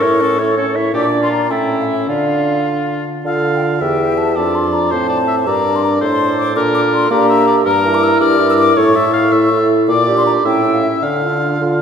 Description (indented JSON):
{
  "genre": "quick classical-period movement for wind quintet",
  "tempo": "102-111 BPM (dotted quarters)",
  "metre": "6/8",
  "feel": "rubato",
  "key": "D minor",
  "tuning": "A4 = 440 Hz",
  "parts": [
    { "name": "mellow hollow concert flute", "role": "melody", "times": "0.0-11.6 s", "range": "D5 to F6", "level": "-19 LUFS", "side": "left 6 dB", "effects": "none" },
    { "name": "warm oboe", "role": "second line", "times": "0.0-11.8 s", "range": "E4 to F5", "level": "-19 LUFS", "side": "left 2 dB", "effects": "none" },
    { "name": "warm French horn", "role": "accompaniment", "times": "0.0-11.8 s", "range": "C4 to F4", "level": "-19 LUFS", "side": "left 1 dB", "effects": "none" },
    { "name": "warm clarinet", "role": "accompaniment", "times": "0.0-11.8 s", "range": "E4 to F5", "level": "-20 LUFS", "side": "right 6 dB", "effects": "none" },
    { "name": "dark bassoon", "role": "bass", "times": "0.0-11.8 s", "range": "E2 to Bb3", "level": "-18 LUFS", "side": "right 2 dB", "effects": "none" }
  ],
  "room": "wet concert hall reverb, RT60 2.2 s",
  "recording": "heard from further back in the room",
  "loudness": "-12 LUFS",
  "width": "side -7 dB against mid",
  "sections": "0.0-3.3 A section; 3.3-11.8 B section",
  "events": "none",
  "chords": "0.0 A; 0.9 Gm/Bb; 1.5 A7; 2.1 Dm; 3.8 Emadd11; 4.4 Dm/F; 5.5 Gm; 6.0 D5/A; 6.6 Gm/Bb; 7.7 Edim/G; 8.8 A; 9.9 Gm/Bb; 10.5 A7; 11.0 Dm"
}